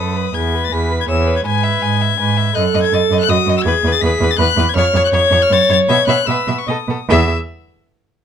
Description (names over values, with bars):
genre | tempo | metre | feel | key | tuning
quick classical-period movement for string quartet | 142-166 BPM | 3/4 | rubato | E major | A4 = 441 Hz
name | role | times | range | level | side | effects
warm violin | melody | 0.0-7.3 s | C#6 to B6 | -18 LUFS | left 9 dB | none
clear violin | second line | 0.0-7.3 s | G#4 to G#5 | -22 LUFS | left 4 dB | none
warm viola | accompaniment | 0.0-7.3 s | F#4 to D#5 | -18 LUFS | right 1 dB | none
rich cello | bass | 0.0-7.3 s | E2 to B2 | -17 LUFS | right 3 dB | none
room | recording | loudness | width
light reverb | dark, warm production | -13 LUFS | side -8 dB against mid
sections
0.0-7.1 A section; 7.1-8.2 B section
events
none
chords
0.4 E; 1.5 E/G#; 2.6 D#dim/F#; 3.7 E; 4.8 C#/E#; 5.5 F#m; 5.9 E5/B; 6.7 B7; 7.1 E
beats
| 0.35 0.73 1.10 | 1.46 1.83 2.20 | 2.56 2.93 3.29 | 3.66 4.03 4.39 | 4.76 5.13 5.51 | 5.89 6.28 6.67 | 7.09